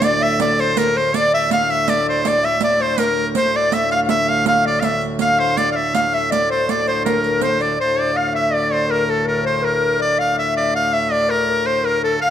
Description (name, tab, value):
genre	medieval dance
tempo	163 BPM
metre	3/4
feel	straight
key	D minor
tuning	A4 = 445 Hz
part	edgy shawm	melody	0.0-12.3 s	A4 to F5	-18 LUFS	right 1 dB	slapback echo
part	tenor recorder	second line	0.0-12.3 s	A4 to F5	-20 LUFS	left 4 dB	none
part	hand-pumped harmonium	drone	0.0-12.3 s	D2 to A2	-24 LUFS	equal	none
part	riq	percussion	0.0-7.7 s	none	-25 LUFS	right 9 dB	none
room	moderate recital hall reverb, RT60 1.5 s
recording	none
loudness	-15 LUFS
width	side -10 dB against mid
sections	0.0-7.8 A section; 7.8-12.3 B section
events	none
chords	none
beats	| 0.03 0.40 0.77 | 1.14 1.51 1.88 | 2.25 2.62 2.99 | 3.36 3.73 4.10 | 4.47 4.84 5.21 | 5.58 5.95 6.32 | 6.69 7.06 7.42 | 7.79 8.16 8.53 | 8.90 9.27 9.63 | 10.00 10.37 10.74 | 11.11 11.47 11.84 | 12.21